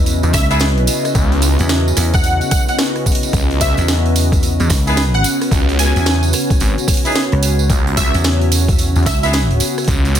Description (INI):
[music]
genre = glitch hop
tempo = 110 BPM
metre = 4/4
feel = swing 63% on 16ths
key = C# minor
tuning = A4 = 440 Hz
[part]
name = warm analog pad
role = sustained chords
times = 0.0-10.2 s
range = C#3 to F#4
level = -23 LUFS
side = equal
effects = chorus, vintage 12-bit sampler grit, sidechain pumping
[part]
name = vintage slap bass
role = bass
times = 0.0-9.6 s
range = C#2 to E2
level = -16 LUFS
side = equal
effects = none
[part]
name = warbly tape-like pad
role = texture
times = 0.0-10.2 s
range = C#4 to D#5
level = -24 LUFS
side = equal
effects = chorus, built-in reverb, phaser, sidechain pumping
[part]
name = drum and bass drum kit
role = drums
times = 0.1-10.2 s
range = hi-hat, rim click, snare drum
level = -22 LUFS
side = right 1 dB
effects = overdrive, studio reverb
[part]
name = tambourine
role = percussion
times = 0.1-10.2 s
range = none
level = -24 LUFS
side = right 5 dB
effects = none
[part]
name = phased detuned saw bass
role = bass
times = 0.2-10.2 s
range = G#1 to E2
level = -15 LUFS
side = equal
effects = phaser
[part]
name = plucky unison lead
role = melody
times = 0.3-9.3 s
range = E5 to G#5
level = -23 LUFS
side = equal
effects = analog chorus, tape echo
[part]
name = electronic kick drum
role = drums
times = 0.3-10.0 s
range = none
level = -17 LUFS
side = equal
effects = overdrive, studio reverb
[part]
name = mellow horn section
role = stabs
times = 0.5-0.6, 4.9-9.4 s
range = B3 to G#4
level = -23 LUFS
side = equal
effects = sidechain pumping, tape echo
[sound]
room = light reverb, digital ambience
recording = dense, heavily limited modern master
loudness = -12 LUFS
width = side -10 dB against mid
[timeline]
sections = 0.0-10.2 A section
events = none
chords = 0.0 C#m9